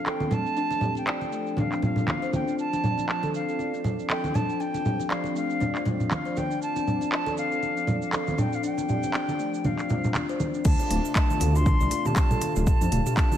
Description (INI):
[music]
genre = afro house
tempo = 119 BPM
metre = 4/4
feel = swing 57% on 16ths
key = D minor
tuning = A4 = 440 Hz
[part]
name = silver concert flute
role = melody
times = 0.0-13.4 s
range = F5 to C6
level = -31 LUFS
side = right 1 dB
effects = digital delay
[part]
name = warm analog pad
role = sustained chords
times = 0.0-13.4 s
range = C3 to D5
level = -34 LUFS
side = right 1 dB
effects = chorus, tremolo, sidechain pumping
[part]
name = kalimba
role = arpeggios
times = 0.1-13.2 s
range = A3 to D5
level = -30 LUFS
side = left 4 dB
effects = sidechain pumping, digital delay
[part]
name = afro-pop drum kit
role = drums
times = 0.1-13.4 s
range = crash cymbal, handclaps, hi-hat, shaker, toms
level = -32 LUFS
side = equal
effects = low-pass filter on perc, low-pass filter on snare, low-pass filter on cymbals, low-pass filter on hats, low-pass filter on toms
[part]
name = congas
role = percussion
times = 0.1-13.4 s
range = none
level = -29 LUFS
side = right 1 dB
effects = none
[part]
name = dark detuned saw bass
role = bass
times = 10.7-13.0 s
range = D1 to F2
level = -24 LUFS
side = equal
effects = sidechain pumping
[part]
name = electronic kick drum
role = drums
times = 10.7-13.3 s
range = none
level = -22 LUFS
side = equal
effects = none
[sound]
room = light reverb, digital ambience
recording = none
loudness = -23 LUFS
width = side -10 dB against mid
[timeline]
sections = 0.0-10.7 A section; 10.7-13.4 B section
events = filter sweep on analog synth pad 0.0-10.7; drop 10.7-13.4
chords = 0.0 Dm7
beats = 0.06 | 0.57 1.07 1.58 2.08 | 2.58 3.09 3.59 4.10 | 4.60 5.11 5.61 6.12 | 6.62 7.12 7.63 8.13 | 8.64 9.14 9.64 10.15 | 10.65 11.16 11.66 12.16 | 12.67 13.17